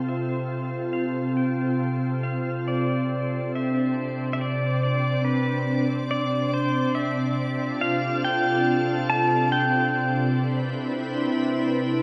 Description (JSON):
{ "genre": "ambient", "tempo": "70 BPM", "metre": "4/4", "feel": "straight", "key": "C major", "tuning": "A4 = 436 Hz", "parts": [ { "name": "pedal steel guitar", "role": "melody", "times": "0.0-12.0 s", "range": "B4 to A5", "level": "-30 LUFS", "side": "equal", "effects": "delay" }, { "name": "soft additive organ-like pad", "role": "sustained chords", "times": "0.0-12.0 s", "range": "C3 to D5", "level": "-26 LUFS", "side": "equal", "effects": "ensemble chorus, built-in reverb" } ], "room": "wet scoring stage reverb, RT60 1.9 s", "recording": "none", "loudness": "-24 LUFS", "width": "mono", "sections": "0.0-12.0 A section", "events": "fade-in on pedal steel guitar 0.0-12.0", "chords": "0.0 Fmaj9/C; 2.7 Cadd9; 6.1 G9sus4/C; 9.5 Cmaj9" }